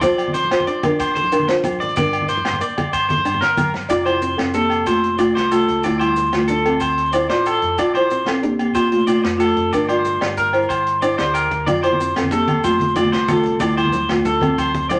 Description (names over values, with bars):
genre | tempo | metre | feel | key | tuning
highlife guitar band | 124 BPM (dotted quarters) | 12/8 | straight | F major | A4 = 444 Hz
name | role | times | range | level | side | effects
folk marimba with soft mallets | melody | 0.0-15.0 s | G3 to D5 | -21 LUFS | equal | none
flamenco guitar | accompaniment | 0.0-15.0 s | A3 to A4 | -32 LUFS | equal | none
electric guitar at the edge of break-up | arpeggios | 0.0-15.0 s | A4 to D5 | -22 LUFS | equal | spring reverb
fingered electric bass | bass | 0.0-15.0 s | F1 to Bb2 | -33 LUFS | equal | none
vintage drum kit | drums | 0.0-15.0 s | hi-hat, kick drum, snare drum | -32 LUFS | equal | none
agogo bells | percussion | 0.0-15.0 s | none | -31 LUFS | equal | none
congas | percussion | 0.0-3.7, 11.7-15.0 s | none | -28 LUFS | equal | none
maracas | percussion | 0.0-15.0 s | none | -43 LUFS | equal | none
room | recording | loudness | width
wet studio reverb, RT60 0.6 s | none | -18 LUFS | mono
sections
0.0-3.9 A section; 3.9-15.0 B section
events
drum fill 3.7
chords
0.0 Bbadd9; 2.0 Gm; 3.9 F6; 5.8 Dmadd9; 7.8 Bbadd9; 9.7 Gm; 11.7 F6; 13.6 Dmadd9